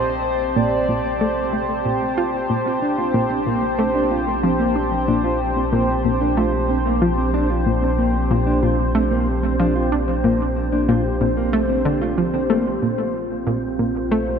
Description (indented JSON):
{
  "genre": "ambient, sequencer-driven space music",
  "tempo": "93 BPM",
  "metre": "4/4",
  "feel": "straight",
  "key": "Bb major",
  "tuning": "A4 = 440 Hz",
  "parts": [
    { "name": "pulse-width lead", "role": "melody", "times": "0.0-1.9 s", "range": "C5 to D5", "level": "-26 LUFS", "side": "left 1 dB", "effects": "chorus, tape echo" },
    { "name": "sweeping resonant pad", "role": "sustained chords", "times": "0.0-14.4 s", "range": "C4 to A5", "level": "-23 LUFS", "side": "equal", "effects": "chorus" },
    { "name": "analog pluck", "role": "riff", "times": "0.0-14.2 s", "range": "Bb2 to F4", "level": "-23 LUFS", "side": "left 1 dB", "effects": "chorus, tape echo" },
    { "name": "warm sub bass", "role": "bass", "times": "0.0-14.4 s", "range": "Bb1", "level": "-26 LUFS", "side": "equal", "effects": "none" },
    { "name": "wind-like tuned noise texture", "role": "texture", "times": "0.2-14.4 s", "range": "C5", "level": "-32 LUFS", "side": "left 3 dB", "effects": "built-in reverb" },
    { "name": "mellow electric guitar", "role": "arpeggios", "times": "2.7-12.7 s", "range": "Bb3 to F4", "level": "-23 LUFS", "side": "right 1 dB", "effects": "auto-pan, tape echo" }
  ],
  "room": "wet cathedral reverb, RT60 4.9 s",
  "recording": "in a vast, echoing space",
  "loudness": "-17 LUFS",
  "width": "side -7 dB against mid",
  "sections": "0.0-12.8 A section; 12.8-14.4 B section",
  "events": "fade-in on sub bass 0.0-12.8; fade-in on synth texture 0.0-12.8",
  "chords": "0.0 Bbadd9; 12.8 Bbsus2"
}